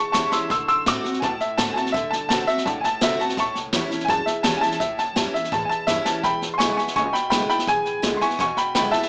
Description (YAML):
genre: rockabilly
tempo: 167 BPM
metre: 4/4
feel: straight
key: A mixolydian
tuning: A4 = 441 Hz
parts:
  - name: warm upright piano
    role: melody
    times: 0.0-9.1 s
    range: E5 to E6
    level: -24 LUFS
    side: equal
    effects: analog delay
  - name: picked steel-string acoustic guitar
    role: accompaniment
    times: 0.0-9.1 s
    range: E2 to F#4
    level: -30 LUFS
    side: equal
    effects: none
  - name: upright bass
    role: bass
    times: 0.1-9.0 s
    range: E1 to D3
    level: -36 LUFS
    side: equal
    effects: none
  - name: jazz brush drum kit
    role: drums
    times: 0.1-9.1 s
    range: hi-hat, kick drum, snare drum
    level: -29 LUFS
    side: equal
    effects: none
room: light reverb, small room ambience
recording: small speaker sound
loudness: -22 LUFS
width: mono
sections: 0.0-9.1 A section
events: upright piano solo 0.0-9.1; drum fill 0.3, 5.9-6.2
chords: 0.0 A7; 0.5 D7; 3.4 A7; 6.2 E7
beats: 0.15 | 0.51 0.87 1.23 1.59 | 1.94 2.30 2.66 3.02 | 3.38 3.74 4.09 4.45 | 4.81 5.17 5.53 5.89 | 6.24 6.60 6.96 7.32 | 7.68 8.04 8.39 8.75